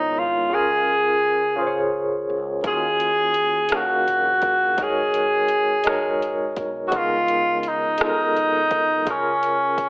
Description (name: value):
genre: slow six-eight R&B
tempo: 56 BPM (dotted quarters)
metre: 6/8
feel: straight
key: Eb minor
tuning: A4 = 440 Hz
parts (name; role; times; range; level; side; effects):
- warm tenor saxophone; melody; 0.0-9.9 s; Db4 to Ab4; -19 LUFS; equal; slapback echo
- barky tine electric piano; accompaniment; 0.0-9.9 s; Db3 to F5; -25 LUFS; equal; medium tremolo
- fretless electric bass; bass; 0.0-9.9 s; Ab1 to Eb2; -42 LUFS; equal; none
- smooth R&B drum kit; drums; 2.6-9.9 s; hi-hat, kick drum, rim click; -27 LUFS; equal; none
room: moderate echo chamber reverb, RT60 1.6 s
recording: telephone sound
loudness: -18 LUFS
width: side -32 dB against mid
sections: 0.0-9.9 A section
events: none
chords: 0.5 Bbm7/Db; 2.6 Ebm11; 4.8 Ab9sus4; 6.9 Db13; 9.1 Bbm7/Db